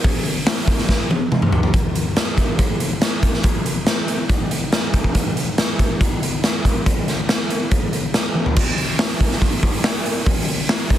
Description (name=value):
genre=rock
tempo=141 BPM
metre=4/4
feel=straight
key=none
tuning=none
part: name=raw garage drum kit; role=drums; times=0.0-11.0 s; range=crash cymbal, hi-hat, kick drum, snare drum, toms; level=-17 LUFS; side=equal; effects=none
room=light reverb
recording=dense, heavily limited modern master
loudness=-17 LUFS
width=side -12 dB against mid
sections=0.0-1.7 A section; 1.7-8.6 B section; 8.6-11.0 A section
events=drum fill 0.9-1.7, 8.4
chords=none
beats=| 0.04 0.47 0.89 1.31 | 1.74 2.16 2.58 3.01 | 3.44 3.87 4.29 4.72 | 5.15 5.58 6.00 6.43 | 6.86 7.29 7.71 8.14 | 8.56 8.99 9.41 9.84 | 10.26 10.69